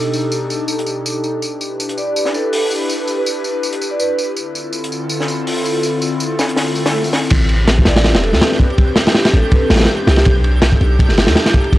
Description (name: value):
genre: drum and bass, jungle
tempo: 163 BPM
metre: 4/4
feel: swing 55% on 16ths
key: A minor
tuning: A4 = 442 Hz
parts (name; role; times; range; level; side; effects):
- airy breathy pad; sustained chords; 0.0-11.8 s; B2 to B4; -20 LUFS; left 1 dB; chorus
- crunchy breakbeat drum kit; drums; 0.1-7.2 s; hi-hat, snare drum, tambourine; -22 LUFS; left 1 dB; high-pass filter on hats, high-pass filter on snare, high-pass filter on perc, high-pass filter on room
- vibraphone with medium mallets; melody; 2.0-4.3, 7.9-10.3 s; G4 to D5; -22 LUFS; right 2 dB; dub echo
- swell; sound effects; 6.7-7.3 s; none; -24 LUFS; right 1 dB; none
- warm 808-style bass; bass; 7.3-11.4 s; E1 to D#2; -14 LUFS; equal; none
- crunchy breakbeat drum kit; drums; 7.3-11.8 s; crash cymbal, kick drum, ride cymbal, snare drum; -12 LUFS; equal; none
- twinkling granular texture; texture; 8.1-11.8 s; G6; -28 LUFS; right 3 dB; built-in reverb
room: light reverb, small room ambience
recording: dry, gritty hardware recording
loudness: -13 LUFS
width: side -16 dB against mid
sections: 0.0-7.3 A section; 7.3-11.8 B section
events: swell 6.7-7.3; drop 7.3-11.8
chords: 0.0 B7alt; 1.4 Em7; 4.4 Dm9; 7.3 Am11; 10.3 B7alt